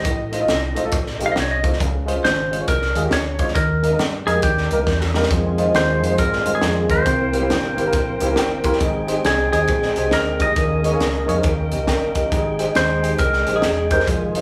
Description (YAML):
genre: uptempo gospel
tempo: 137 BPM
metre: 4/4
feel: swing 63% on 8ths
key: Ab major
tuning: A4 = 440 Hz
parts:
  - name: clean lap steel guitar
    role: melody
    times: 0.0-14.1 s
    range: G4 to F5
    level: -24 LUFS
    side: equal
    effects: none
  - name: crisp fusion drum kit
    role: drums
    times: 0.0-14.4 s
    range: hi-hat, kick drum, snare drum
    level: -26 LUFS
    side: equal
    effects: none
  - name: dark grand piano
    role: accompaniment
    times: 0.1-14.4 s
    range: Ab2 to C6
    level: -25 LUFS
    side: equal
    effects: none
  - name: fingered electric bass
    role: bass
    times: 0.1-14.4 s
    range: Fb1 to Ab2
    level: -26 LUFS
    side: equal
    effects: none
  - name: tonewheel organ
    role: sustained chords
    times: 5.3-14.4 s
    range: Eb3 to G5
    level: -26 LUFS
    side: equal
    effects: overdrive, stopped rotary speaker
room: moderate studio reverb, RT60 0.6 s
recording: band playing live in one room, small room reverb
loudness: -19 LUFS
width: mono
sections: 0.0-14.4 A section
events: drum fill 4.9-5.3; grand piano fill 8.2-8.8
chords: 0.1 F7/A; 1.8 Dbmaj7; 3.6 Ebsus4; 4.4 Eb; 5.3 Fm7; 7.1 C7; 8.8 Abmaj7; 10.6 Eb7sus4; 11.4 Eb7; 12.3 Abmaj7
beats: | 0.05 0.49 0.93 1.36 | 1.80 2.24 2.68 3.12 | 3.55 3.99 4.43 4.87 | 5.30 5.74 6.18 6.62 | 7.06 7.49 7.93 8.37 | 8.81 9.25 9.69 10.13 | 10.56 11.00 11.44 11.88 | 12.32 12.76 13.20 13.63 | 14.07